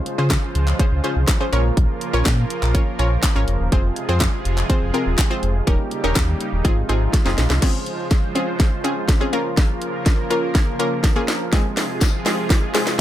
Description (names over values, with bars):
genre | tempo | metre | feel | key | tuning
dance-pop | 123 BPM | 4/4 | straight | Bb minor | A4 = 441 Hz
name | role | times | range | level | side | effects
wide unison pluck | accompaniment | 0.0-13.0 s | Ab3 to Db5 | -24 LUFS | left 1 dB | sidechain pumping
filtered supersaw swell | sustained chords | 0.0-13.0 s | C3 to C5 | -26 LUFS | right 1 dB | sidechain pumping
house drum kit | drums | 0.1-13.0 s | crash cymbal, handclaps, hi-hat, kick drum, snare drum | -18 LUFS | equal | none
sub bass with octave | bass | 0.2-7.6 s | Eb1 to Db3 | -20 LUFS | equal | sidechain pumping
tambourine | percussion | 12.0-12.1 s | none | -31 LUFS | left 6 dB | none
room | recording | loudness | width
little or no reverb | none | -17 LUFS | side -12 dB against mid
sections
0.0-7.6 A section; 7.6-13.0 B section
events
drum fill 7.1-7.6, 7.6-13.0; build-up 7.6-13.0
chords
0.0 Dbmaj7; 1.5 Bbm; 3.7 Fm; 5.7 Eb7; 6.6 Ab6; 7.6 Dbmaj7; 9.3 Bbm; 11.5 Fm